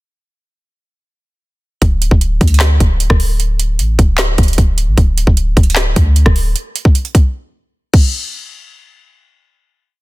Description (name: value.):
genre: hip hop, trap.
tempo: 152 BPM.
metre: 4/4.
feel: half-time.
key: unclear.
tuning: A4 = 437 Hz.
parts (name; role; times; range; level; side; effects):
clean 808-style bass; bass; 1.8-6.5 s; D1 to D2; -13 LUFS; equal; none.
trap drum kit; drums; 1.8-8.0 s; crash cymbal, handclaps, hi-hat, kick drum, rim click, snare drum; -12 LUFS; equal; none.
room: digital ambience.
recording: dense, heavily limited modern master.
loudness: -10 LUFS.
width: side -20 dB against mid.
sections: 1.8-8.1 hook; 8.1-10.0 final hit.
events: break 7.3-8.1.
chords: none.